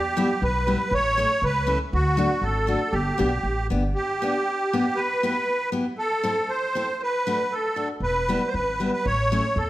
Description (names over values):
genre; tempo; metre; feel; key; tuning
alpine folk; 118 BPM; 2/4; rubato; G major; A4 = 440 Hz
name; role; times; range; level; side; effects
musette accordion; melody; 0.0-9.7 s; F#4 to C#5; -23 LUFS; right 1 dB; none
upright bass; bass; 0.0-3.9, 8.0-9.7 s; E1 to E2; -26 LUFS; equal; none
picked steel-string acoustic guitar; accompaniment; 0.2-9.4 s; G3 to A4; -28 LUFS; left 2 dB; none
room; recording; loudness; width
moderate recital hall reverb, RT60 1.3 s; none; -21 LUFS; side -15 dB against mid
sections
0.0-4.0 A section; 4.0-9.7 A section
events
none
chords
0.0 Em; 0.9 A; 1.9 D; 2.9 Gadd9; 4.0 G; 5.0 Em; 6.0 Am; 7.0 D; 8.0 Em; 9.1 A